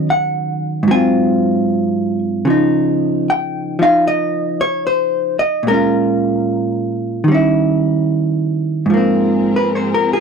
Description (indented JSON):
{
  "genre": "jazz ballad",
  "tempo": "75 BPM",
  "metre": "4/4",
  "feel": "swing 67% on 8ths",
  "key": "Ab major",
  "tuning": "A4 = 435 Hz",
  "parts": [
    { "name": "vintage hollow-body jazz guitar", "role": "accompaniment", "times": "0.0-10.2 s", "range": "Ab2 to Ab5", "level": "-14 LUFS", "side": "right 1 dB", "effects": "none" },
    { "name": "warm studio string section", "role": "sustained chords", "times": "8.9-10.2 s", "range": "F3 to Bb4", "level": "-23 LUFS", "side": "left 4 dB", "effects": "none" }
  ],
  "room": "moderate booth ambience, RT60 0.2 s",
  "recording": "dry, close 1970s-style studio recording",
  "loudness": "-14 LUFS",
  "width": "side -6 dB against mid",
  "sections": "0.0-8.9 A section; 8.9-10.2 B section",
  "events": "none",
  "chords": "0.0 Ebm7; 0.9 Ab6; 2.5 Dbadd9; 5.7 Bbm7; 7.3 Eb7b9; 8.9 Ab69",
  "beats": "0.07 0.87 1.67 | 2.47 3.27 4.06 4.86 | 5.66 6.46 7.26 8.08 | 8.89 9.69"
}